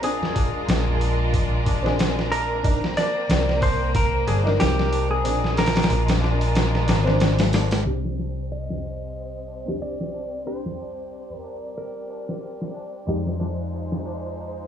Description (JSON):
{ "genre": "trip hop", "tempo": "92 BPM", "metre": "4/4", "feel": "swing 56% on 16ths", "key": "C minor", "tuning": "A4 = 440 Hz", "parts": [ { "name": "clean electric guitar", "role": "melody", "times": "0.0-12.7 s", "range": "G4 to Eb5", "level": "-29 LUFS", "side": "right 1 dB", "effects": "vintage 12-bit sampler grit, tape echo" }, { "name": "dark upright piano", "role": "accompaniment", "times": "0.0-13.2 s", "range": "Ab3 to C5", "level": "-30 LUFS", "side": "equal", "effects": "tremolo, tape echo" }, { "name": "rich studio violin section", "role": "sustained chords", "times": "0.0-14.7 s", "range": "G3 to D5", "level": "-30 LUFS", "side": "equal", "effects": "low-pass filter" }, { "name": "hollow-body short-scale fingered electric bass", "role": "bass", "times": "0.0-14.7 s", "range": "G1 to F2", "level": "-24 LUFS", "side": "equal", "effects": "none" }, { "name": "trip hop sampler-style drum kit", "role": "drums", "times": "0.0-14.6 s", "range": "hi-hat, kick drum, snare drum", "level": "-24 LUFS", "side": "equal", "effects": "low-pass filter on hats, studio ambience, low-pass filter on kick, low-pass filter on snare" }, { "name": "tabla", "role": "percussion", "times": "0.0-14.5 s", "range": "none", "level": "-36 LUFS", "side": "left 3 dB", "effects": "none" } ], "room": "light reverb, studio ambience", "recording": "vinyl crackle, low-pass filter, studio reverb", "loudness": "-20 LUFS", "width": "side -9 dB against mid", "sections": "0.0-7.9 A section; 7.9-14.7 B section", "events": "filter sweep on violin section 7.9-14.7; filter sweep 7.9-14.7", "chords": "0.0 Bb7; 2.6 Cm7; 5.2 Bb7; 7.9 Csus2; 13.1 Fm7" }